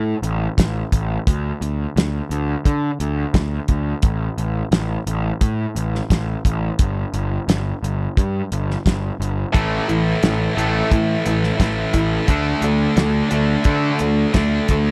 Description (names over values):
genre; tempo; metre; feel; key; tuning
classic rock; 87 BPM; 4/4; straight; unclear; A4 = 436 Hz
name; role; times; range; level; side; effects
fuzz picked electric bass; bass; 0.0-14.9 s; G1 to D3; -23 LUFS; equal; overdrive
cloth-damped thuddy drum kit; drums; 0.2-14.8 s; hi-hat, kick drum, snare drum; -21 LUFS; equal; none
biting overdriven guitar; riff; 9.5-14.9 s; A2 to D4; -24 LUFS; equal; none
tight distorted guitar; riff; 9.5-14.9 s; A2 to D4; -24 LUFS; equal; distortion
room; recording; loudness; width
little or no reverb; dry, close 1970s-style studio recording; -20 LUFS; mono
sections
0.0-14.9 A section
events
none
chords
0.0 N.C.; 9.5 A5; 12.3 D5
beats
0.57 | 1.26 1.96 2.65 3.34 | 4.03 4.72 5.41 6.10 | 6.79 7.47 8.16 8.85 | 9.54 10.22 10.91 11.60 | 12.28 12.97 13.66 14.34